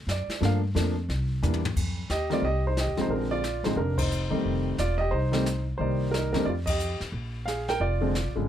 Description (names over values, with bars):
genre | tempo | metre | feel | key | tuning
jazz piano trio | 178 BPM | 4/4 | swing 62% on 8ths | F mixolydian | A4 = 440 Hz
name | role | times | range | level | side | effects
upright bass | bass | 0.0-8.5 s | E1 to G2 | -28 LUFS | equal | none
warm grand piano | melody | 0.1-8.5 s | Db3 to G5 | -27 LUFS | equal | none
jazz brush drum kit | drums | 0.1-8.5 s | brushed snare drum, crash cymbal, hi-hat, kick drum, ride cymbal, snare drum, toms | -34 LUFS | left 2 dB | none
room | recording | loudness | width
little or no reverb | close, detailed microphones | -25 LUFS | side -10 dB against mid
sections
0.0-1.8 A section; 1.8-8.5 B section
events
grand piano solo 0.0-1.8; drum fill 1.4-1.8; band accent 3.9, 6.6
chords
0.4 Gm7; 1.1 C9; 1.8 F7sus2; 3.1 Bb9; 4.4 F9; 5.8 Cm7; 6.5 Fsus2; 7.1 Bb7